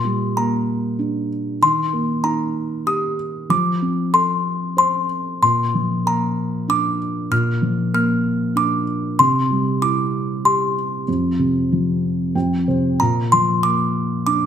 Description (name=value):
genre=children's music, lullaby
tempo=95 BPM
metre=3/4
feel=rubato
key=Bb major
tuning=A4 = 443 Hz
part: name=music box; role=melody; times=0.0-14.5 s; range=Bb5 to F6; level=-19 LUFS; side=left 1 dB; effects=none
part: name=felt-muted upright piano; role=accompaniment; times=0.0-14.5 s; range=F2 to G5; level=-20 LUFS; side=equal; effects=none
room=moderate recital hall reverb, RT60 1.3 s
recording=none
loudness=-17 LUFS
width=side -9 dB against mid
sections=0.0-13.0 A section; 13.0-14.5 A section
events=felt piano fill 12.0-13.0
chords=0.0 Gm/Bb; 1.6 Eb; 3.5 F; 5.4 Bb; 9.2 C; 11.1 F5; 13.0 Bb